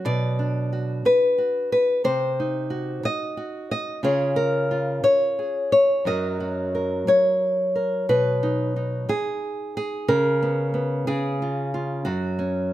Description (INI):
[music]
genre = folk, solo fingerstyle acoustic guitar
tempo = 60 BPM (dotted quarters)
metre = 6/8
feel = rubato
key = F# major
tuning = A4 = 440 Hz
[part]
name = nylon-string guitar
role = solo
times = 0.0-12.7 s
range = F#2 to Eb5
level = -21 LUFS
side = equal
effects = none
[sound]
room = light reverb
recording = close, detailed microphones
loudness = -21 LUFS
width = side -14 dB against mid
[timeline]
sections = 0.0-12.7 A section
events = none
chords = 0.1 Bm; 2.0 Cdim; 4.0 C#; 6.1 F#; 8.1 B; 10.1 A#m/C#; 11.1 C#7; 12.1 F#5